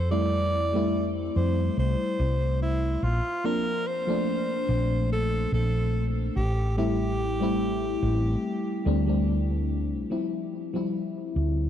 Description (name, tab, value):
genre	vaporwave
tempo	72 BPM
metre	4/4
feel	straight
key	D minor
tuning	A4 = 438 Hz
part	breathy alto saxophone	melody	0.0-9.2 s	E4 to D5	-30 LUFS	equal	tape echo
part	woody fretless electric bass	bass	0.0-11.7 s	A1 to F2	-26 LUFS	equal	none
part	mellow FM electric piano	accompaniment	0.1-11.7 s	F3 to E4	-28 LUFS	left 2 dB	wide subtle chorus, analog delay
room	light reverb, small room ambience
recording	dark, warm production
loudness	-24 LUFS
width	side -10 dB against mid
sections	0.0-10.1 A section; 10.1-11.7 B section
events	none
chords	0.0 Fmaj7; 3.0 Bbmaj9; 6.4 Am7; 10.1 Dm11